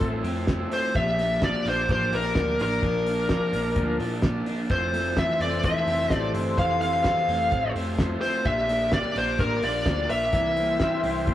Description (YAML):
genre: jangly indie pop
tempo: 128 BPM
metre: 4/4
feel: straight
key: F major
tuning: A4 = 440 Hz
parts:
  - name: smooth overdriven lead guitar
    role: melody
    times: 0.0-11.3 s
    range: A4 to F5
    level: -25 LUFS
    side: left 1 dB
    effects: none
  - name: vibraphone with medium mallets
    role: second line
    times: 0.0-11.3 s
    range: D4 to G4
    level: -39 LUFS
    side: equal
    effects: none
  - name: raw garage guitar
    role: accompaniment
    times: 0.0-11.3 s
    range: Bb2 to F4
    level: -32 LUFS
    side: right 2 dB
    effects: overdrive
  - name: phased analog pad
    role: sustained chords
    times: 0.0-11.3 s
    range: F4 to D6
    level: -35 LUFS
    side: equal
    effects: phaser, chorus
  - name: twelve-string electric guitar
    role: arpeggios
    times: 0.0-11.3 s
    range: E3 to F4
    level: -31 LUFS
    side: left 1 dB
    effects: none
  - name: vintage muted picked electric bass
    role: bass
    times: 0.0-11.3 s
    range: E1 to Bb2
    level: -33 LUFS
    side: equal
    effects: none
  - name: cloth-damped thuddy drum kit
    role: drums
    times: 0.0-11.3 s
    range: hi-hat, kick drum, snare drum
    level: -29 LUFS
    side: equal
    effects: none
room: moderate stone room reverb, RT60 1.4 s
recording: rough rehearsal-room recording, tube saturation, vinyl crackle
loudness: -22 LUFS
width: side -12 dB against mid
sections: 0.0-11.3 A section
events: none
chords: 0.0 Fmaj7; 0.9 Bb; 4.7 Fmaj7; 8.5 Bb; 10.3 C7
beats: 0.01 0.48 | 0.95 1.42 1.89 2.36 | 2.83 3.30 3.77 4.24 | 4.71 5.18 5.64 6.11 | 6.58 7.05 7.52 7.99 | 8.46 8.93 9.40 9.87 | 10.34 10.80 11.27